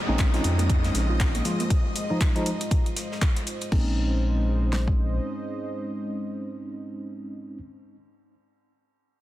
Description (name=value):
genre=deep house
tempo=119 BPM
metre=4/4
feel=swing 59% on 16ths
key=Bb minor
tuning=A4 = 439 Hz
part: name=dark analog pad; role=sustained chords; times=0.9-7.6 s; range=Ab3 to Eb5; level=-36 LUFS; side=left 2 dB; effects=chorus, sidechain pumping
part: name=downlifter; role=sound effects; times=0.0-3.7 s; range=none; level=-35 LUFS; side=equal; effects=none
part: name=string machine, violins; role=texture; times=0.0-3.7 s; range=Eb5 to Eb6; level=-38 LUFS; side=left 1 dB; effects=ensemble chorus, sidechain pumping
part: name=soft round pluck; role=arpeggios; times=0.1-4.0 s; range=Bb3 to F4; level=-36 LUFS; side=right 4 dB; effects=none
part: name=tine electric piano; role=stabs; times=0.1-7.6 s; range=F3 to F4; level=-30 LUFS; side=right 1 dB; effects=medium tremolo, sidechain pumping, low-pass filter, tape echo
part: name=rubbery square bass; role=bass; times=0.1-5.2 s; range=Bb1 to F2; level=-25 LUFS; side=equal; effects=tube saturation, sidechain pumping
part: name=deep house drum kit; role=drums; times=0.2-5.0 s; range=kick drum, snare drum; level=-23 LUFS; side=equal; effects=small room ambience
part: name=deep house drum kit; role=drums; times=0.2-3.8 s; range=crash cymbal, handclaps, hi-hat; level=-33 LUFS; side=equal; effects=small room ambience
part: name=gated 80s drum kit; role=drums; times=0.2-3.7 s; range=ride cymbal, snare drum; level=-41 LUFS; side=right 1 dB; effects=sidechain pumping on cymbals, high-pass filter on cymbals, small room ambience, high-pass filter on snare, high-pass filter on room
room=light reverb, digital ambience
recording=dense, heavily limited modern master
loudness=-23 LUFS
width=side -15 dB against mid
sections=0.0-3.7 A section; 3.7-7.8 B section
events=filter sweep on tine electric piano 0.0-3.7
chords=0.0 Bbm11; 1.5 Fm7; 3.7 Bbm11